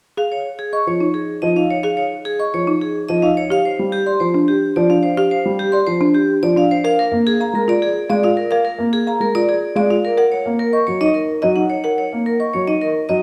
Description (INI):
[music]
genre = classical, minimalist pattern music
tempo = 108 BPM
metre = 3/4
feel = straight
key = unclear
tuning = A4 = 440 Hz
[part]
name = vibraphone with hard mallets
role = melody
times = 0.2-13.2 s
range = G4 to Db6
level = -21 LUFS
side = equal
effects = none
[part]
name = folk marimba with medium mallets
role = arpeggios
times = 0.2-13.2 s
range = D4 to F5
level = -22 LUFS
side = equal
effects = none
[part]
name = dark baby grand piano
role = accompaniment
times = 0.9-13.2 s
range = F3 to Bb3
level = -22 LUFS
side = equal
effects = none
[sound]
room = moderate scoring stage reverb, RT60 1.6 s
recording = none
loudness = -17 LUFS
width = mono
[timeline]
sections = 0.2-13.2 A section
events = none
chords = 0.2 Db; 3.5 Fsus2; 6.8 Bb; 10.2 Gb